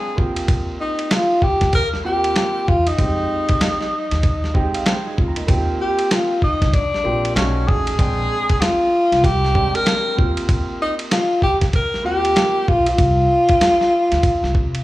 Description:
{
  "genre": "hip hop, jazz-hop",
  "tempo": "96 BPM",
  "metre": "4/4",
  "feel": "swing 62% on 16ths",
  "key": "unclear",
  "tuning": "A4 = 438 Hz",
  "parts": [
    { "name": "mellow tenor saxophone", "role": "melody", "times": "0.0-14.7 s", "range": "C#4 to Bb4", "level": "-18 LUFS", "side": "left 1 dB", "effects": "none" },
    { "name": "warm concert grand piano", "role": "accompaniment", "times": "0.0-12.7 s", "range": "G3 to Bb5", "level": "-26 LUFS", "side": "right 2 dB", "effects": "slapback echo" },
    { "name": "upright bass", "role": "bass", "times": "0.2-14.8 s", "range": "A1 to C3", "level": "-23 LUFS", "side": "equal", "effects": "none" },
    { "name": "dusty soul sampler-style drum kit", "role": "drums", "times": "0.2-14.8 s", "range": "hi-hat, kick drum, ride cymbal, snare drum", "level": "-20 LUFS", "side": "equal", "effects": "none" }
  ],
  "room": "light reverb",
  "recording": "live gig heard through the venue's PA, club reverb",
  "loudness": "-15 LUFS",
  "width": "side -16 dB against mid",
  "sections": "0.0-14.8 A section",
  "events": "grand piano fill 4.2-5.5",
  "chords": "0.2 Eb6; 3.0 Fm9; 5.5 Eb6; 7.4 B9; 8.0 Bb13 (rootless); 10.2 Eb6; 13.0 Csus4"
}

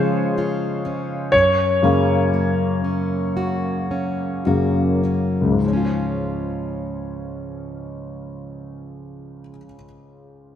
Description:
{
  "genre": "pop",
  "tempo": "49-64 BPM",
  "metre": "4/4",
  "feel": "straight",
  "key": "Db major",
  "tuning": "A4 = 440 Hz",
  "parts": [
    { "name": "clear concert grand piano", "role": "accompaniment", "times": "0.0-10.6 s", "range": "Db2 to Db5", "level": "-19 LUFS", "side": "left 2 dB", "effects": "lush chorus" },
    { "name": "fingerpicked plugged-in steel-string acoustic guitar", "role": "arpeggios", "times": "0.0-9.8 s", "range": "Gb2 to Gb4", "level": "-27 LUFS", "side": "right 4 dB", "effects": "none" }
  ],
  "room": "moderate plate reverb, RT60 1.9 s, digital ambience",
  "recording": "dreamy mix soaked in reverb",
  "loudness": "-18 LUFS",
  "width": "side -10 dB against mid",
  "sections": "0.0-5.6 A section; 5.6-10.5 B section",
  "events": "slowing down 0.0-5.6; grand piano solo 0.0-5.6",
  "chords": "0.0 Db; 1.3 Gb; 5.6 Db"
}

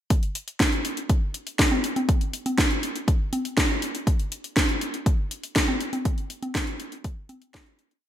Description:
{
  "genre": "italo disco",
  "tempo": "121 BPM",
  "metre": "4/4",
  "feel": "straight",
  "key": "none",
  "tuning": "none",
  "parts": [
    { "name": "electronic kick drum", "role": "drums", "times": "0.1-7.6 s", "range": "none", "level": "-23 LUFS", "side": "equal", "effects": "overdrive" },
    { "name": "house drum kit", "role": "drums", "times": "0.1-8.0 s", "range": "congas, hi-hat, snare drum", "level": "-25 LUFS", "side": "equal", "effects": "overdrive, gated reverb" }
  ],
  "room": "moderate plate reverb, RT60 1.8 s, digital ambience",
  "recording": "bright 1980s-style digital production",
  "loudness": "-22 LUFS",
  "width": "side -11 dB against mid",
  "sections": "0.1-8.0 verse",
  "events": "fade-out 5.4-8.0",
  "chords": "none"
}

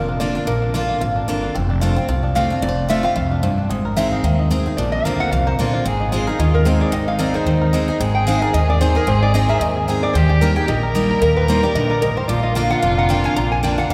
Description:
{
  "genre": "bluegrass",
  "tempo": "223 BPM",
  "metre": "4/4",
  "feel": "swing 56% on 8ths",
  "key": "unclear",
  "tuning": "A4 = 440 Hz",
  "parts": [
    { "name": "bluegrass banjo", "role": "melody", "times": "0.0-13.9 s", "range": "F3 to Bb4", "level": "-29 LUFS", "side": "equal", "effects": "none" },
    { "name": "lap resonator guitar", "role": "melody", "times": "0.0-13.9 s", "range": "G4 to Bb5", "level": "-25 LUFS", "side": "equal", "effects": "none" },
    { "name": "picked steel-string acoustic guitar", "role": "accompaniment", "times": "0.0-13.9 s", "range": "F2 to Ab4", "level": "-22 LUFS", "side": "equal", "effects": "none" },
    { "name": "upright bass", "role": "bass", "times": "0.0-13.9 s", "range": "F1 to Eb2", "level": "-23 LUFS", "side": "equal", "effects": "none" },
    { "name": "dark fiddle", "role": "second line", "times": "5.9-13.9 s", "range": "D4 to Bb4", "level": "-25 LUFS", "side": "equal", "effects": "none" }
  ],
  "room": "wet church reverb, RT60 3.4 s",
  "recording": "recorded in a church or concert hall",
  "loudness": "-18 LUFS",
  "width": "mono",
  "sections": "0.0-5.9 A section; 5.9-13.9 B section",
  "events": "none",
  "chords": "0.0 Bb; 1.6 F6; 3.7 Ab; 4.8 Bbadd9; 5.9 Ab; 10.1 Eb; 12.3 Bb"
}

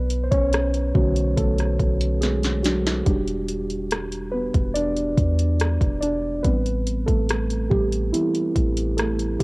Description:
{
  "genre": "contemporary R&B",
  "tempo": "71 BPM",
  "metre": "4/4",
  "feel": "straight",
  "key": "E minor",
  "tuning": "A4 = 441 Hz",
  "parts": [
    { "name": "muted felt-like synth keys", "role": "accompaniment", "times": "0.0-9.4 s", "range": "D3 to D5", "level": "-23 LUFS", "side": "right 1 dB", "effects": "chorus, cassette tape" },
    { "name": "clean 808-style bass", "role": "bass", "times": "0.0-9.4 s", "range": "E1 to E2", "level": "-24 LUFS", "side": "equal", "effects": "none" },
    { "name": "smooth R&B drum kit", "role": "drums", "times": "0.1-9.4 s", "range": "hi-hat, kick drum, rim click, snare drum", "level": "-24 LUFS", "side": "equal", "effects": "overdrive, cassette tape" }
  ],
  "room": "little or no reverb",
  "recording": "home recording on cassette",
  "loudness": "-20 LUFS",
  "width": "side -24 dB against mid",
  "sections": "0.0-9.4 A section",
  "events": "synth keys solo 0.0-9.4; drum fill 2.2-3.1",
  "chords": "0.0 Bm9; 3.1 Em9; 6.4 Am9"
}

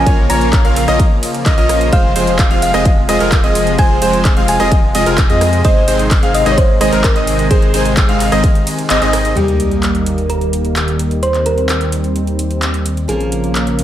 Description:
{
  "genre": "EDM, festival progressive house",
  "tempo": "129 BPM",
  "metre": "4/4",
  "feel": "straight",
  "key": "unclear",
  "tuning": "A4 = 440 Hz",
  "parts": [
    { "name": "thumb-piano-like synth pluck", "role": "melody", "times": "0.0-13.8 s", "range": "G4 to Bb5", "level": "-20 LUFS", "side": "right 1 dB", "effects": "chorus, diffuse ambient delay" },
    { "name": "lush unison pad", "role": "sustained chords", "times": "0.0-13.8 s", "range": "C3 to C4", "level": "-20 LUFS", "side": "equal", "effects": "chorus, sidechain pumping" },
    { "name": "bright concert grand piano", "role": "arpeggios", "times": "0.0-9.3 s", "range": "Bb4 to F5", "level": "-19 LUFS", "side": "equal", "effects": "sidechain pumping, low-pass filter, diffuse ambient delay" },
    { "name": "supersaw stab", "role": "riff", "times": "0.0-9.3 s", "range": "Ab3 to F5", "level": "-18 LUFS", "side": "equal", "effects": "lush chorus, sidechain pumping, diffuse ambient delay" },
    { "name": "saturated sub bass", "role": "bass", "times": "0.0-13.8 s", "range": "F1 to F2", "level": "-19 LUFS", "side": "equal", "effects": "sidechain pumping" },
    { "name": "big-room dance drum kit", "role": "drums", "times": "0.1-13.8 s", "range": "handclaps, hi-hat, ride cymbal, rim click", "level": "-21 LUFS", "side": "right 1 dB", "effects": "overdrive, studio reverb" },
    { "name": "electronic kick drum", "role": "drums", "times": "0.1-8.5 s", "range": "none", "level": "-12 LUFS", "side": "equal", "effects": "overdrive, studio reverb" },
    { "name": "picked steel-string acoustic guitar", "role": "accompaniment", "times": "9.4-13.8 s", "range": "F3 to Bb4", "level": "-23 LUFS", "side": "right 2 dB", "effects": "sidechain pumping, diffuse ambient delay" },
    { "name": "sub drop", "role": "sound effects", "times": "9.4-11.2 s", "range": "none", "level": "-23 LUFS", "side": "equal", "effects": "none" }
  ],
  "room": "moderate plate reverb, RT60 1.0 s",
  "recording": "dreamy mix soaked in reverb",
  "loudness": "-11 LUFS",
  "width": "side -12 dB against mid",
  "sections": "0.0-9.4 A section; 9.4-13.8 B section",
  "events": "drop 0.0-9.4; kick drops out 8.9-9.4; band accent 8.9; impact 9.4-11.2; filter sweep on analog synth pad 9.4-13.8",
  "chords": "0.0 Bbm; 1.9 Fm; 5.6 Ab; 9.4 Eb; 13.1 Bbm"
}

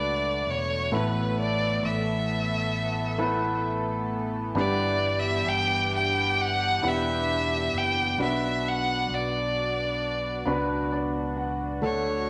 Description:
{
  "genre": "pop ballad",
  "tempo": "66 BPM",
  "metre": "4/4",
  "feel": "straight",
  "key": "unclear",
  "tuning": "A4 = 439 Hz",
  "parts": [
    { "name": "clear violin", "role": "melody", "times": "0.0-12.3 s", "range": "B4 to G5", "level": "-29 LUFS", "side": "equal", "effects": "none" },
    { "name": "warm concert grand piano", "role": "accompaniment", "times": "0.0-12.3 s", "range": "G2 to F#5", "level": "-32 LUFS", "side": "equal", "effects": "none" },
    { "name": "chorused pulse-width pad", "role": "sustained chords", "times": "0.0-12.3 s", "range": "E3 to A4", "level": "-36 LUFS", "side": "equal", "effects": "none" },
    { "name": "fingered electric bass", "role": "bass", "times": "0.0-12.3 s", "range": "E1 to D2", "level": "-35 LUFS", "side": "equal", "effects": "none" }
  ],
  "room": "wet large studio reverb, RT60 1.3 s",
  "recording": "none",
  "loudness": "-27 LUFS",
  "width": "mono",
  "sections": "0.0-12.3 A section",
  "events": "grand piano fill 10.5-11.8",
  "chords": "0.0 Dmaj7; 0.9 Asus2; 4.6 Em7/G; 8.2 Bmadd9"
}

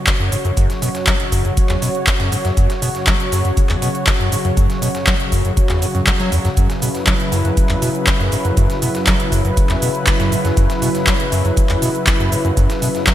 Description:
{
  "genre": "acid house",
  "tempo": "120 BPM",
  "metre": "4/4",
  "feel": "straight",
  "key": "unclear",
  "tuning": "A4 = 440 Hz",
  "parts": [
    { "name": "warm analog pad", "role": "sustained chords", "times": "0.0-13.1 s", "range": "C#3 to C#5", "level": "-21 LUFS", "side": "equal", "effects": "chorus, sidechain pumping" },
    { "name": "dusty soul sampler-style drum kit", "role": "drums", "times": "0.1-13.1 s", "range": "hi-hat, shaker, snare drum", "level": "-32 LUFS", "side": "equal", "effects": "none" },
    { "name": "electro analog drum machine", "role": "drums", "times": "0.1-13.1 s", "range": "cabasa, handclaps, hi-hat", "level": "-21 LUFS", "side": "equal", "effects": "studio reverb" },
    { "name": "electronic kick drum", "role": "drums", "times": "0.1-13.1 s", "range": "none", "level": "-17 LUFS", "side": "equal", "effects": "studio reverb" },
    { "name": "overdriven acid bass", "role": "riff", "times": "0.2-13.1 s", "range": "E2 to F#3", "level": "-20 LUFS", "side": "equal", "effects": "distortion, lush chorus, digital delay" }
  ],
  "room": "light reverb",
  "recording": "bright 1980s-style digital production",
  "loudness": "-14 LUFS",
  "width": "side -12 dB against mid",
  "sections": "0.0-13.1 A section",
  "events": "none",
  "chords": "0.0 F#5"
}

